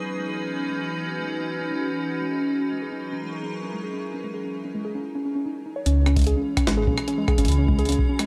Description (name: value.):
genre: IDM.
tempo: 148 BPM.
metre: 4/4.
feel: straight.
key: C# dorian.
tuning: A4 = 445 Hz.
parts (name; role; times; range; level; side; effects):
icy glass pad; sustained chords; 0.0-8.3 s; E3 to B4; -31 LUFS; equal; chorus, built-in reverb, shimmer reverb.
warbly dusty pluck; arpeggios; 0.1-8.3 s; G#3 to C#5; -31 LUFS; equal; chorus, tape echo, shimmer reverb.
dark detuned saw bass; bass; 5.9-8.0 s; G#1 to C#2; -23 LUFS; equal; tube saturation.
jungle sampler-style drum kit; drums; 5.9-8.3 s; hi-hat, rim click, snare drum; -31 LUFS; equal; low-pass filter on snare, low-pass filter on hats.
electronic kick drum; drums; 6.2-8.1 s; none; -26 LUFS; equal; none.
room: light reverb, digital ambience.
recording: none.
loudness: -25 LUFS.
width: mono.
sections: 0.0-5.9 A section; 5.9-8.3 B section.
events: filter sweep on synth pluck 0.0-5.9.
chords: 0.0 C#m11; 2.6 F#9; 4.2 G#5; 5.9 C#m.